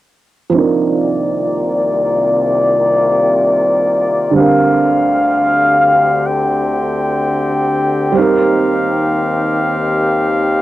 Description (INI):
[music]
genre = R&B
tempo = free time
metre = none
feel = none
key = unclear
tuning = A4 = 440 Hz
[part]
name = felt-muted upright piano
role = accompaniment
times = 0.5-10.6 s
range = D3 to Bb4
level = -17 LUFS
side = right 4 dB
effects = low-pass filter, cassette tape
[part]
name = clear brass ensemble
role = sustained chords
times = 0.5-10.6 s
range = C2 to G5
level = -13 LUFS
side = left 1 dB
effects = low-pass filter, cassette tape
[sound]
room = moderate booth ambience, RT60 0.2 s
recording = home recording on cassette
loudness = -12 LUFS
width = side -15 dB against mid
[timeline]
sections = 0.5-10.6 A section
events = filter sweep 0.5-10.6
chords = 0.5 Cm11; 4.4 Bb69/D; 8.2 Eb6